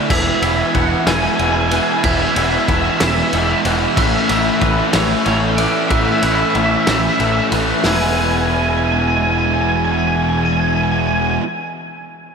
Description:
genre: post-rock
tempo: 62 BPM (dotted quarters)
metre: 6/8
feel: straight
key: E major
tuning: A4 = 441 Hz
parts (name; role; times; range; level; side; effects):
- glockenspiel with soft plastic mallets; arpeggios; 0.0-8.2 s; E6 to G#6; -27 LUFS; right 4 dB; diffuse ambient delay
- twangy electric guitar; arpeggios; 0.0-11.4 s; A2 to E4; -25 LUFS; left 3 dB; ensemble chorus, diffuse ambient delay
- distorted electric guitar; riff; 0.0-11.4 s; E2 to A3; -22 LUFS; left 11 dB; distortion
- thick fuzz guitar; riff; 0.0-11.4 s; A2 to E4; -21 LUFS; right 11 dB; distortion
- twangy electric guitar; melody; 0.1-11.4 s; B4 to G#5; -20 LUFS; right 1 dB; ensemble chorus, diffuse ambient delay
- growling picked electric bass; bass; 0.1-11.4 s; E1 to A1; -21 LUFS; left 1 dB; overdrive
- loose indie drum kit; drums; 0.1-8.0 s; crash cymbal, hi-hat, kick drum, ride cymbal, snare drum; -20 LUFS; equal; none
room: moderate lush hall reverb, RT60 2.7 s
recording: dreamy mix soaked in reverb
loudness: -14 LUFS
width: side -6 dB against mid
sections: 0.0-7.8 A section; 7.8-11.7 B section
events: none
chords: 0.1 E; 4.0 A; 7.8 E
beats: | 0.10 1.07 | 2.04 3.00 | 3.97 4.94 | 5.91 6.87 | 7.84 8.81 | 9.77 10.74

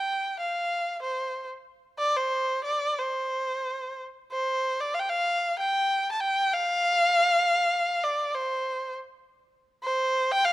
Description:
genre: chinese traditional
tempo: 87-100 BPM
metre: 4/4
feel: rubato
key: C zhi mode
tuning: A4 = 440 Hz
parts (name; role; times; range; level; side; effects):
- rich erhu; solo; 0.0-10.5 s; C5 to A5; -24 LUFS; equal; none
room: light reverb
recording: close, detailed microphones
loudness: -24 LUFS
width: side -16 dB against mid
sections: 0.0-4.3 A section; 4.3-10.5 B section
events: none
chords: none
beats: 0.39 1.03 | 1.67 2.32 2.99 3.67 | 4.33 4.96 5.58 6.20 | 6.81 7.42 8.03 8.63 | 9.23 9.84 10.45

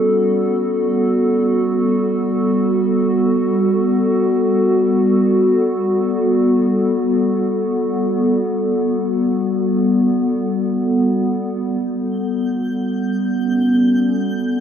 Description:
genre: ambient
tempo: free time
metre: none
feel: none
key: unclear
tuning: A4 = 440 Hz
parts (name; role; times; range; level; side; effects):
- warbly tape-like pad; sustained chords; 0.0-14.6 s; G3 to A4; -15 LUFS; equal; chorus, built-in reverb
- twinkling granular texture; texture; 12.4-14.6 s; G6; -35 LUFS; left 1 dB; built-in reverb
room: wet huge ambient reverb, RT60 7.9 s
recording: in a vast, echoing space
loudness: -15 LUFS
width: side -8 dB against mid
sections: 0.0-11.8 A section; 11.8-14.6 B section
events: none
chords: 0.0 Gmaj9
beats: free time

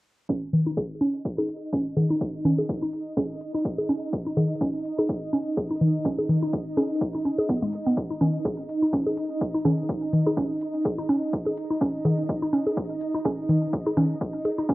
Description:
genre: minimal techno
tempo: 125 BPM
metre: 4/4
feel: swing 56% on 16ths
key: unclear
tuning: A4 = 440 Hz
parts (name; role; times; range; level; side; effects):
- mallet-like synth pluck; riff; 0.3-14.7 s; G#3 to G#4; -27 LUFS; right 1 dB; chorus, sidechain pumping, cassette tape, analog delay
- electronic kick drum; drums; 0.3-14.7 s; none; -30 LUFS; equal; high-pass filter on kick
- swarming drone; texture; 1.5-14.7 s; D#4; -31 LUFS; right 1 dB; built-in reverb, sidechain pumping, cassette tape
- electronic hi-hat; drums; 0.5-14.7 s; none; -60 LUFS; equal; none
- congas and bongos; percussion; 0.5-14.6 s; none; -25 LUFS; left 1 dB; analog delay
room: wet studio ambience, RT60 0.5 s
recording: home recording on cassette, low-pass filter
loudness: -23 LUFS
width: side -18 dB against mid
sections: 0.3-14.7 A section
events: filter sweep on synth arpeggio sound 0.3-14.7; filter sweep 0.3-14.7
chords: none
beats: | 0.29 0.77 1.25 1.73 | 2.21 2.69 3.17 3.65 | 4.13 4.61 5.09 5.57 | 6.05 6.53 7.01 7.49 | 7.97 8.45 8.93 9.41 | 9.89 10.37 10.85 11.33 | 11.81 12.29 12.77 13.25 | 13.73 14.21 14.69

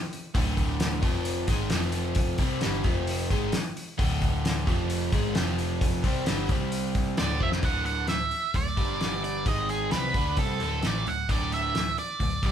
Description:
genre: classic rock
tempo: 132 BPM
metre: 4/4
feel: straight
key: unclear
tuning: A4 = 440 Hz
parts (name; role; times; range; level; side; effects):
- cloth-damped thuddy drum kit; drums; 0.1-12.5 s; hi-hat, kick drum, snare drum; -28 LUFS; equal; none
- biting overdriven guitar; riff; 0.3-12.5 s; D2 to D4; -30 LUFS; equal; none
- hollow-body short-scale picked electric bass; bass; 0.4-12.5 s; D1 to D2; -32 LUFS; equal; none
- octave-fuzz lead guitar; melody; 7.2-12.5 s; G#4 to F#5; -29 LUFS; right 4 dB; distortion, tape echo
room: light reverb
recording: band playing live in one room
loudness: -24 LUFS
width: side -9 dB against mid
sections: 0.0-7.6 A section; 7.6-12.5 B section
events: drum fill 7.4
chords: 0.0 D5; 1.0 F5; 1.5 G#5; 1.7 F5; 2.4 Gsus4; 2.9 F5; 3.3 D5; 4.7 F5; 5.1 G#5; 5.4 F5; 6.0 Gsus4; 6.5 C5; 7.2 D5; 8.8 G5; 9.5 G#5; 9.9 D5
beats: | 0.36 0.81 1.26 1.72 | 2.17 2.63 3.08 3.54 | 4.00 4.45 4.91 5.36 | 5.82 6.27 6.73 7.18 | 7.64 8.10 8.55 9.01 | 9.47 9.92 10.38 10.84 | 11.29 11.75 12.21

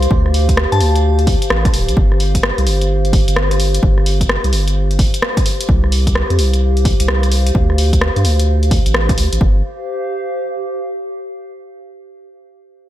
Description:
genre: UK garage, two-step garage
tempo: 129 BPM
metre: 4/4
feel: swing 64% on 16ths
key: unclear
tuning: A4 = 439 Hz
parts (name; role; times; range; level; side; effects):
- saturated sub bass; bass; 0.0-9.6 s; D1 to G2; -15 LUFS; equal; none
- punchy analog drum machine; drums; 0.0-9.4 s; hi-hat, rim click; -20 LUFS; equal; none
- warbly tape-like pad; texture; 0.0-11.2 s; G4 to F5; -22 LUFS; left 1 dB; chorus, built-in reverb, sidechain pumping
- electronic kick drum; drums; 0.1-9.5 s; none; -15 LUFS; equal; none
- glassy synth bell; melody; 0.7-0.8 s; A5; -25 LUFS; left 2 dB; chorus, tape echo
room: light reverb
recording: none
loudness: -12 LUFS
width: side -13 dB against mid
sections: 0.0-9.4 A section; 9.4-11.3 B section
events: none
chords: 0.1 Dm7; 2.0 G7sus4; 5.5 Csus4; 7.5 Dm7; 9.4 G7sus4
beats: | 0.11 0.57 1.04 1.50 | 1.97 2.43 2.90 3.36 | 3.83 4.29 4.76 5.22 | 5.69 6.15 6.62 7.08 | 7.55 8.01 8.48 8.95 | 9.41 9.88 10.34 10.80

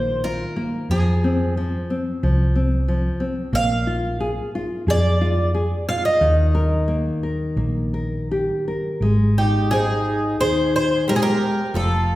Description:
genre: fado-style ballad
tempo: 90 BPM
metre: 4/4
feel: rubato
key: Ab major from 9.0 s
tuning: A4 = 440 Hz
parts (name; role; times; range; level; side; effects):
- picked twelve-string acoustic guitar; melody; 0.0-12.2 s; G4 to F5; -22 LUFS; right 1 dB; none
- nylon-string guitar; accompaniment; 0.0-12.2 s; Eb3 to G5; -23 LUFS; left 1 dB; none
- hollow-body short-scale fingered electric bass; bass; 0.0-12.2 s; F1 to F2; -22 LUFS; equal; none
- picked twelve-string acoustic guitar; second line; 9.4-12.2 s; Eb4 to Ab4; -26 LUFS; right 2 dB; none
room: wet recital hall reverb, RT60 1.8 s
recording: heard from further back in the room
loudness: -18 LUFS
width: side -16 dB against mid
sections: 0.0-9.0 A section; 9.0-12.2 B section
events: none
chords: 0.0 Ebsus2; 0.9 Fm; 3.5 Bb7; 6.2 Eb; 9.0 Abmaj7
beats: 0.24 | 0.90 1.56 2.23 2.88 | 3.54 4.21 4.87 5.54 | 6.20 6.88 7.57 8.29 | 9.00 9.70 10.39 11.07 | 11.73

